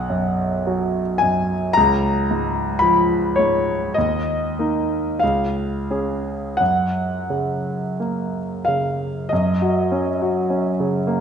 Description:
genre	classical, romantic nocturne for solo piano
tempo	42-57 BPM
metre	4/4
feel	rubato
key	F# major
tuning	A4 = 439 Hz
part	clear grand piano	solo	0.0-11.2 s	B1 to B5	-18 LUFS	equal	none
room	wet recital hall reverb, RT60 1.6 s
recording	nothing above 10.5 kHz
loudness	-18 LUFS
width	side -7 dB against mid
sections	0.0-9.3 A section; 9.3-11.2 B section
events	none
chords	0.0 B5; 1.8 C#6; 4.0 D#5; 5.2 C#; 6.6 F#; 9.3 F#5

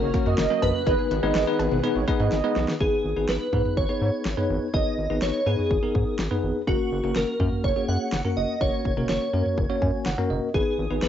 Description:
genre	synth-pop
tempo	124 BPM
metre	4/4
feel	straight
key	G# minor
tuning	A4 = 440 Hz
part	shimmering bell with halo	melody	0.0-11.1 s	F#4 to F#5	-28 LUFS	left 1 dB	ensemble chorus
part	mellow synth brass	second line	0.0-2.7 s	B4 to D#5	-28 LUFS	right 10 dB	chorus, cassette tape, analog delay
part	bell-like tine electric piano	accompaniment	0.0-11.1 s	A#3 to G#5	-27 LUFS	left 1 dB	medium stereo tremolo, cassette tape
part	soft string machine	sustained chords	0.0-2.8 s	C#3 to G#4	-36 LUFS	left 1 dB	none
part	wide unison pluck	arpeggios	0.0-2.6 s	C#3 to D#5	-35 LUFS	left 9 dB	cassette tape, analog delay
part	round analog bass	bass	0.0-11.1 s	F#1 to G#2	-27 LUFS	equal	none
part	pop drum kit	drums	0.1-11.1 s	cowbell, hi-hat, kick drum, snare drum, toms	-28 LUFS	equal	none
room	moderate studio reverb, RT60 0.5 s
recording	home recording on cassette, nothing above 7.7 kHz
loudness	-22 LUFS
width	side -10 dB against mid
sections	0.0-2.8 A section; 2.8-11.1 B section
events	drum fill 2.3-2.8; tine electric piano fill 9.6-10.5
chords	0.0 F#; 0.9 G#m; 6.7 F#; 10.5 G#m

